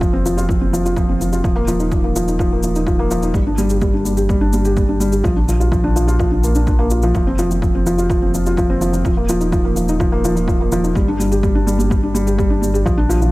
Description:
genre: piano and strings electronica.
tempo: 126 BPM.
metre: 4/4.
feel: straight.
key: G minor.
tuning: A4 = 442 Hz.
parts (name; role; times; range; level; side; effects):
felt-muted upright piano; riff; 0.0-13.3 s; F3 to G4; -17 LUFS; equal; tape echo.
warm sub bass; bass; 0.0-13.3 s; Eb1 to Bb1; -20 LUFS; equal; sidechain pumping.
electronic kick drum; drums; 0.0-13.0 s; none; -20 LUFS; equal; overdrive, studio reverb.
shaker; drums; 0.0-13.3 s; none; -32 LUFS; left 1 dB; overdrive, studio reverb.
room: digital ambience.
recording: none.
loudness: -14 LUFS.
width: side -19 dB against mid.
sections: 0.0-13.3 A section.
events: none.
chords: 0.0 F5; 1.4 Ebsus2; 3.3 G5; 5.2 Bb; 7.2 F5; 9.1 Ebsus2; 11.0 G5.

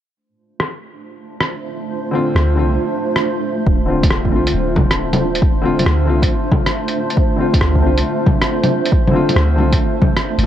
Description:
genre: future garage.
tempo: 137 BPM.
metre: 4/4.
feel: swing 67% on 16ths.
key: D minor.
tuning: A4 = 440 Hz.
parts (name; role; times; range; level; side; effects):
granular cloud pad; sustained chords; 1.0-10.5 s; A3 to C5; -20 LUFS; right 2 dB; built-in reverb, sidechain pumping.
lo-fi sampler-style drum kit; drums; 0.6-10.4 s; bongos, hi-hat, rim click; -19 LUFS; left 1 dB; low-pass filter on snare, low-pass filter on hats, low-pass filter on perc, low-pass filter on room.
warm upright piano; accompaniment; 2.1-10.5 s; D3 to F4; -21 LUFS; left 3 dB; sidechain pumping, analog delay.
soft 808-style bass; bass; 2.3-10.5 s; D1 to D2; -18 LUFS; equal; sidechain pumping.
electronic kick drum; drums; 3.7-10.1 s; none; -16 LUFS; equal; overdrive.
room: light reverb, digital ambience.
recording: cassette tape.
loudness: -14 LUFS.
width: side -11 dB against mid.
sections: 0.2-3.7 A section; 3.7-10.5 B section.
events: fade-in on ambient pad 0.2-3.7; filter sweep on drum 0.2-3.7.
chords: 0.2 Dm7.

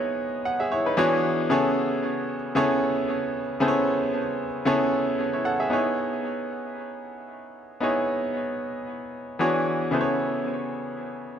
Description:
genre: amapiano.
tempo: 114 BPM.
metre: 4/4.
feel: swing 55% on 16ths.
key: C# minor.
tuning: A4 = 437 Hz.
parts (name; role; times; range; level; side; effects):
bright grand piano; solo; 0.0-11.4 s; C#3 to F#5; -23 LUFS; equal; tape echo.
room: wet concert hall reverb, RT60 1.8 s.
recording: dark, warm production.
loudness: -23 LUFS.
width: side -8 dB against mid.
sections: 0.0-5.7 A section; 5.7-11.4 B section.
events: drop 0.0-5.7.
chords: 0.0 C#m9; 1.0 E13; 1.5 Amaj7/C#; 5.7 C#m9; 9.4 E13; 9.9 Amaj7/C#.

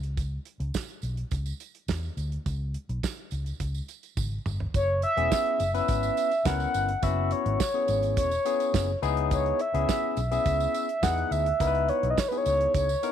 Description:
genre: early-eighties boogie funk.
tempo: 105 BPM.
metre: 4/4.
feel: straight.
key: unclear.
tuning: A4 = 440 Hz.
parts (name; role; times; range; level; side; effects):
vintage muted fingered electric bass; bass; 0.0-12.9 s; E1 to E2; -30 LUFS; equal; none.
damped 70s drum kit; drums; 0.0-13.1 s; hi-hat, kick drum, snare drum, toms; -31 LUFS; right 2 dB; none.
tambourine; percussion; 0.2-13.1 s; none; -43 LUFS; right 17 dB; none.
mellow horn-like synth lead; melody; 4.8-13.1 s; B4 to F#5; -26 LUFS; right 1 dB; chorus, tape echo.
barky tine electric piano; accompaniment; 5.2-13.1 s; B3 to B4; -31 LUFS; left 15 dB; none.
room: moderate plate reverb, RT60 2.0 s.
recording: 1960s-style stereo with parts hard left and right.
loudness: -25 LUFS.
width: side -9 dB against mid.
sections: 0.0-4.7 A section; 4.7-13.1 B section.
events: drum fill 4.2-4.7.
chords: 0.0 N.C.; 4.7 F#9sus4; 9.0 C#m9.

